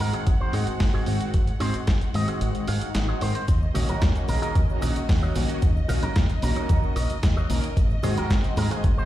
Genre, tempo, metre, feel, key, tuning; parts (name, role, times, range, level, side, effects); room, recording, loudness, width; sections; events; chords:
nu-disco, nu disco; 112 BPM; 4/4; straight; Eb dorian; A4 = 443 Hz
electric guitar with an envelope filter; melody; 0.0-9.1 s; Bb4 to Eb5; -35 LUFS; right 2 dB; dub echo
mellow synth brass; accompaniment; 0.0-9.1 s; Eb3 to Bb4; -31 LUFS; equal; chorus, phaser, digital delay
warm studio violin section; sustained chords; 0.0-9.1 s; Eb5 to Gb5; -38 LUFS; equal; sidechain pumping
fingered electric bass with an envelope filter; bass; 0.0-8.9 s; Ab1 to Ab2; -25 LUFS; equal; tube saturation
dusty soul sampler-style drum kit; drums; 0.0-8.9 s; hi-hat, snare drum; -33 LUFS; equal; overdrive, small room reverb
electric guitar with an envelope filter; riff; 0.1-8.9 s; Gb4 to F5; -36 LUFS; right 1 dB; wide subtle chorus, digital delay
electronic kick drum; drums; 0.3-9.0 s; -22 LUFS; equal; overdrive, small room reverb
swell; sound effects; 2.6-3.5 s; -37 LUFS; left 2 dB
cabasa and congas; percussion; 3.5-9.1 s; -32 LUFS; left 2 dB
little or no reverb; played on a big sound system in a bare room, large studio reverb; -21 LUFS; side -14 dB against mid
0.0-9.1 A section
kick drops out 2.4-3.5; swell 2.6-3.5
0.0 Ab7; 3.5 Ebm7; 7.8 Ab7